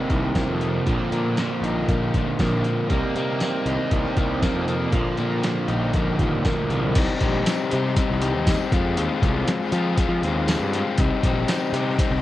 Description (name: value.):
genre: indie rock.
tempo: 118 BPM.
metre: 4/4.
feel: straight.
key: C minor.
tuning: A4 = 440 Hz.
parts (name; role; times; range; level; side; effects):
fuzz guitar; riff; 0.0-6.9 s; Bb2 to Eb4; -26 LUFS; right 4 dB; distortion, wide subtle chorus, analog delay.
overdriven electric guitar; riff; 0.0-12.2 s; Eb3 to F4; -25 LUFS; left 4 dB; none.
fuzz picked electric bass; bass; 0.1-12.2 s; Bb1 to F3; -26 LUFS; equal; overdrive.
boom bap sampler-style drum kit; drums; 0.1-12.1 s; crash cymbal, hi-hat, kick drum, snare drum, tambourine; -24 LUFS; equal; none.
string machine, cellos; sustained chords; 6.9-12.2 s; G4 to Eb6; -34 LUFS; right 1 dB; none.
tambourine; percussion; 7.5-11.6 s; none; -44 LUFS; right 4 dB; none.
room: light reverb.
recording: worn, warbling old tape, cassette tape, warbly pitch drift.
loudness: -20 LUFS.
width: side -14 dB against mid.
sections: 0.0-7.0 A section; 7.0-12.2 B section.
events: none.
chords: 0.0 Cm7; 0.9 Bbsus4; 2.9 Cm7; 4.9 Bbsus4; 7.0 Cm; 8.7 Fm7; 11.0 Cm.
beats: 0.35 | 0.86 1.37 1.88 2.39 | 2.90 3.40 3.91 4.42 | 4.93 5.44 5.94 6.45 | 6.96 7.46 7.96 8.47 | 8.97 9.47 9.97 10.47 | 10.98 11.48 11.98.